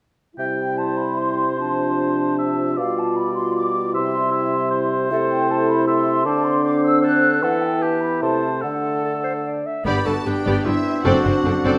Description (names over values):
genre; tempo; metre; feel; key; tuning
quick classical-period movement for symphony orchestra; 152 BPM; 3/4; rubato; C major, G major from 5.1 s; A4 = 440 Hz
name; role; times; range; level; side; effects
clear clarinet; second line; 0.4-11.8 s; E4 to E5; -30 LUFS; equal; none
mellow cor anglais; second line; 0.4-11.8 s; C4 to G5; -29 LUFS; equal; none
mellow hollow small flute group; second line; 0.4-11.2 s; D5 to F#6; -27 LUFS; equal; none
dark bassoon; accompaniment; 0.4-11.2 s; B2 to C4; -27 LUFS; equal; none
mellow French horn section; sustained chords; 0.4-11.8 s; F3 to F4; -26 LUFS; equal; none
clear studio viola section; accompaniment; 9.8-11.8 s; B3 to A4; -27 LUFS; equal; none
rich studio violin section; melody; 9.9-11.8 s; G4 to D5; -32 LUFS; equal; none
rich studio violin section; second line; 9.9-11.8 s; E5 to B5; -32 LUFS; equal; none
bright studio double bass section; bass; 9.9-11.7 s; F#1 to G1; -27 LUFS; equal; none
rich studio cello section; bass; 9.9-11.7 s; F#2 to G2; -29 LUFS; equal; none
room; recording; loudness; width
moderate scoring stage reverb, RT60 1.7 s; none; -20 LUFS; mono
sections
0.4-9.9 A section; 9.9-11.8 B section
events
none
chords
0.4 C; 1.6 Dm7/C; 2.8 G7/B; 3.9 C; 5.1 Am/C; 6.3 D7; 7.4 Em; 8.2 Am/C; 8.6 D; 9.9 G; 11.1 D7/F#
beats
| 0.38 0.78 1.18 | 1.58 1.98 2.37 | 2.77 3.16 3.56 | 3.94 4.33 4.71 | 5.10 5.49 5.88 | 6.26 6.64 7.03 | 7.42 7.82 8.22 | 8.63 9.04 9.45 | 9.86 10.27 10.66 | 11.06 11.45